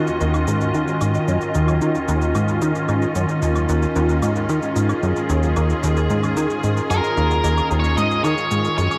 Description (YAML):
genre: ambient, sequencer-driven space music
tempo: 112 BPM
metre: 4/4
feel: straight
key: Eb minor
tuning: A4 = 440 Hz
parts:
  - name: evolving wavetable pad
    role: sustained chords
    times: 0.0-9.0 s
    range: Eb3 to Eb5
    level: -24 LUFS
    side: equal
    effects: ensemble chorus, built-in reverb, shimmer reverb
  - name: plucky analog bass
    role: riff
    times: 0.0-8.9 s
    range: Eb2 to Eb3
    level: -22 LUFS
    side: equal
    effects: ensemble chorus, tape echo
  - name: cabasa and woodblock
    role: percussion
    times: 0.1-9.0 s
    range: none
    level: -36 LUFS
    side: equal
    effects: tape echo
  - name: octave-fuzz lead guitar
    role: melody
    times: 6.9-9.0 s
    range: Bb4 to Eb5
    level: -23 LUFS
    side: equal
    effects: distortion, shimmer reverb, tape echo
room: wet plate reverb, RT60 2.7 s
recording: cassette tape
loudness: -20 LUFS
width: mono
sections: 0.0-9.0 A section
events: none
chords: 0.0 Ebm7